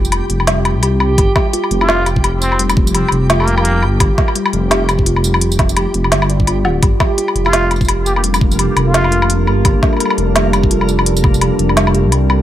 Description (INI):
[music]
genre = half-time drum and bass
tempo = 170 BPM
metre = 4/4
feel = swing 58% on 16ths, half-time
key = G minor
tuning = A4 = 440 Hz
[part]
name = kalimba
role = arpeggios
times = 0.0-12.4 s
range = G3 to G5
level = -20 LUFS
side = left 1 dB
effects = vintage 12-bit sampler grit, tape echo
[part]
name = dark detuned saw bass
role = bass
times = 0.0-12.4 s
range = D1 to C2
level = -16 LUFS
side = equal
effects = none
[part]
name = organic electronic drum kit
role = drums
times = 0.0-12.4 s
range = hi-hat, snare drum, tambourine, woodblock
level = -17 LUFS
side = left 1 dB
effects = none
[part]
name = backwards swelling texture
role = texture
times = 0.0-12.4 s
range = Bb3 to G4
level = -24 LUFS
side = right 2 dB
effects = built-in reverb
[part]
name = electronic kick drum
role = drums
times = 1.2-11.3 s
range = none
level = -14 LUFS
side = equal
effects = overdrive
[part]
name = trumpet with plunger mute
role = melody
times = 1.8-3.8, 7.5-9.4 s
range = Bb3 to G4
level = -21 LUFS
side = equal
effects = vintage 12-bit sampler grit, digital delay
[part]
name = deep dark ambient pad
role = sustained chords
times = 8.0-12.4 s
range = G3 to Bb4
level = -20 LUFS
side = right 2 dB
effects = chorus, built-in reverb, vintage 12-bit sampler grit, sidechain pumping
[sound]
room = light reverb, digital ambience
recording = none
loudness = -11 LUFS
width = side -12 dB against mid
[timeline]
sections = 0.0-12.4 A section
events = none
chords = 0.0 Gm